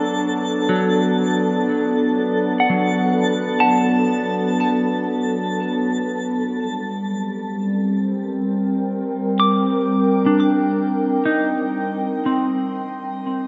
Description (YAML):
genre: ambient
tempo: free time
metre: none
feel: none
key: unclear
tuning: A4 = 440 Hz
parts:
  - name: warbly tape-like pad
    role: sustained chords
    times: 0.0-13.5 s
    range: F#3 to G5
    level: -22 LUFS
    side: equal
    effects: chorus, built-in reverb, shimmer reverb
  - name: semi-hollow electric guitar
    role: arpeggios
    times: 0.0-13.5 s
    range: F#3 to D6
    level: -24 LUFS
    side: equal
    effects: tape echo, shimmer reverb
  - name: twinkling granular texture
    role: texture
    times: 0.0-6.5 s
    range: A4 to A5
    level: -29 LUFS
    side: equal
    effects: built-in reverb, shimmer reverb
room: wet cathedral reverb, RT60 5.1 s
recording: in a vast, echoing space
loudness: -20 LUFS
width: mono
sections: 0.0-6.5 A section; 6.5-13.5 B section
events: filter sweep on ambient pad 6.5-13.5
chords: 0.0 Bm7; 6.5 Gmadd11